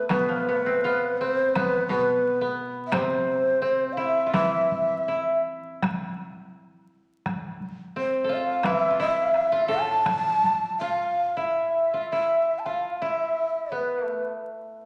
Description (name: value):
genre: japanese traditional, Japanese chamber music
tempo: 78-89 BPM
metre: 2/4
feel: rubato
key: unclear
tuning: A4 = 441 Hz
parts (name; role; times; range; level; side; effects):
- breathy long shakuhachi; melody; 0.0-5.4, 8.0-14.3 s; B4 to A5; -26 LUFS; equal; none
- koto; second line; 0.0-14.9 s; A3 to A4; -32 LUFS; equal; none
- koto; accompaniment; 0.1-11.9 s; A2 to F4; -35 LUFS; equal; none
- taiko ensemble; percussion; 0.1-10.6 s; none; -33 LUFS; equal; none
room: wet scoring stage reverb, RT60 1.6 s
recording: vinyl crackle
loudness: -25 LUFS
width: mono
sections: 0.1-11.6 A section; 11.6-14.9 B section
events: none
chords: none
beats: | 0.10 0.84 | 1.56 2.25 | 2.93 3.63 | 4.35 5.09 | 5.83 6.56 | 7.26 7.96 | 8.65 9.35 | 10.07 10.82 | 11.57 12.31 | 13.03 13.73 | 14.44